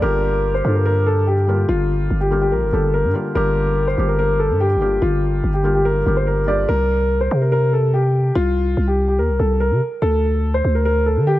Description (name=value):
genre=hip hop, drill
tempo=144 BPM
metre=4/4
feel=half-time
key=G minor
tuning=A4 = 440 Hz
part: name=dark grand piano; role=melody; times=0.0-11.4 s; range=F4 to D5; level=-19 LUFS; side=left 1 dB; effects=none
part: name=felt-muted upright piano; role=accompaniment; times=0.0-6.7 s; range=D3 to Bb4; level=-24 LUFS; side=left 1 dB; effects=none
part: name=growling 808-style bass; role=bass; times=0.0-11.4 s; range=G1 to D3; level=-18 LUFS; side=equal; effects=none
room=studio ambience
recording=none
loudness=-16 LUFS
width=side -15 dB against mid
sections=0.0-11.4 A section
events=none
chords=0.0 Gm7; 6.7 C5; 10.0 D5